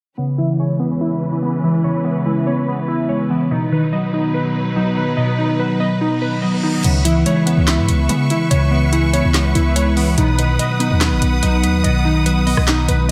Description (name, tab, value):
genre	hip hop, trap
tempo	144 BPM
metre	4/4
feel	half-time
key	C# minor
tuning	A4 = 440 Hz
part	glassy digital keys	accompaniment	0.2-13.1 s	B2 to B3	-20 LUFS	equal	chorus, low-pass filter
part	clear symphonic string section	sustained chords	0.2-13.1 s	E3 to D#6	-28 LUFS	equal	low-pass filter
part	glassy wavetable pluck	arpeggios	0.2-13.1 s	B3 to D#5	-24 LUFS	equal	chorus, low-pass filter, tape echo
part	reverse cymbal	sound effects	6.2-6.8 s	none	-32 LUFS	equal	none
part	hard-hitting 808-style bass	bass	6.8-13.1 s	A1 to E3	-20 LUFS	equal	none
part	trap drum kit	drums	6.8-13.1 s	crash cymbal, handclaps, hi-hat, rim click, snare drum	-24 LUFS	equal	none
room	light reverb, digital ambience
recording	none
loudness	-17 LUFS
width	mono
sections	0.2-6.8 A section; 6.8-13.1 B section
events	filter sweep 0.2-6.8; reverse cymbal 6.2-6.8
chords	0.2 C#m7; 3.5 B; 6.8 C#m7; 10.2 B